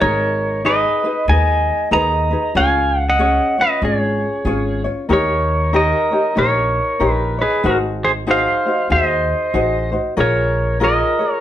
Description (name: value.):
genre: Hawaiian.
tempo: 94 BPM.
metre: 4/4.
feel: swing 62% on 8ths.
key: unclear.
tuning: A4 = 441 Hz.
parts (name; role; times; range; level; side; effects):
pedal steel guitar; melody; 0.0-11.4 s; F#4 to A#5; -17 LUFS; right 1 dB; none.
ukulele; accompaniment; 0.0-11.4 s; C#4 to C#5; -21 LUFS; left 2 dB; none.
upright bass; bass; 0.0-11.0 s; G#1 to D#2; -21 LUFS; equal; none.
room: moderate studio reverb, RT60 0.6 s.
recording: band playing live in one room.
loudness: -14 LUFS.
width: side -11 dB against mid.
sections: 0.0-11.4 A section.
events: none.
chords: 0.0 G#madd9; 2.6 C#; 5.1 D#7; 7.6 G#7; 10.2 A#m7.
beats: | 0.01 0.65 1.28 1.92 | 2.55 3.19 3.82 4.46 | 5.09 5.73 6.36 7.00 | 7.63 8.27 8.90 9.54 | 10.17 10.80.